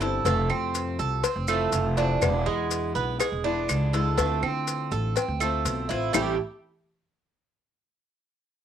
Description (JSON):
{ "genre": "latin, Cuban son and guajira", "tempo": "122 BPM", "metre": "4/4", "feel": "straight", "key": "A minor", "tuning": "A4 = 440 Hz", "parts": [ { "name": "picked steel-string acoustic guitar", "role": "accompaniment", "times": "0.0-6.3 s", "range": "A2 to F4", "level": "-32 LUFS", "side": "left 8 dB", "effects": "cassette tape" }, { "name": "Cuban tres", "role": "arpeggios", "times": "0.0-6.4 s", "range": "G#3 to A4", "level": "-27 LUFS", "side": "right 8 dB", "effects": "cassette tape" }, { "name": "upright bass", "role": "bass", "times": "0.0-6.4 s", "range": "E1 to D3", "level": "-28 LUFS", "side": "equal", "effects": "none" }, { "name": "cowbell and bongos", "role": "percussion", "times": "0.0-6.3 s", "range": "none", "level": "-30 LUFS", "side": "left 10 dB", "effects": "none" }, { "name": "maracas", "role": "percussion", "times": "0.0-6.3 s", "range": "none", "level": "-35 LUFS", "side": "left 8 dB", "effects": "none" }, { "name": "claves", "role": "percussion", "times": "0.5-6.3 s", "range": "none", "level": "-30 LUFS", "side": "right 8 dB", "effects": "none" } ], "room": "moderate studio reverb, RT60 0.6 s", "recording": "home recording on cassette", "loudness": "-23 LUFS", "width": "side -9 dB against mid", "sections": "0.0-6.1 A section; 6.1-8.1 B section", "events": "none", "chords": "0.2 Fmaj7; 2.2 E7; 4.2 Dm9; 6.1 A7(no3)" }